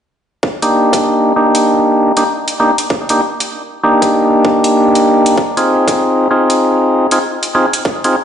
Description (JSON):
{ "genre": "glitch hop", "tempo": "97 BPM", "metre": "4/4", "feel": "swing 62% on 16ths", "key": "unclear", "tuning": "A4 = 440 Hz", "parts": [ { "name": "electronic kick drum", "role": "drums", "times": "0.4-8.0 s", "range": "none", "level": "-16 LUFS", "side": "equal", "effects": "high-pass filter on kick, high-pass filter on room" }, { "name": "percussive tonewheel organ", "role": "stabs", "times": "0.6-8.2 s", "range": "Bb3 to Ab4", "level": "-10 LUFS", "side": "equal", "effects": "overdrive, vintage 12-bit sampler grit, sidechain pumping, low-pass filter, digital delay" }, { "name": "electronic hi-hat", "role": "drums", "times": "0.6-8.1 s", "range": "none", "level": "-21 LUFS", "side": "equal", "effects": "none" } ], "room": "moderate lush hall reverb, RT60 2.3 s", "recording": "played on a big sound system in a bare room, large studio reverb, nothing above 10.7 kHz", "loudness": "-10 LUFS", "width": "side -8 dB against mid", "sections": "0.4-8.2 A section", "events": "filter sweep on tonewheel organ 0.4-8.2", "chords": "0.4 Ebmaj7/Bb; 5.4 Ab6/C" }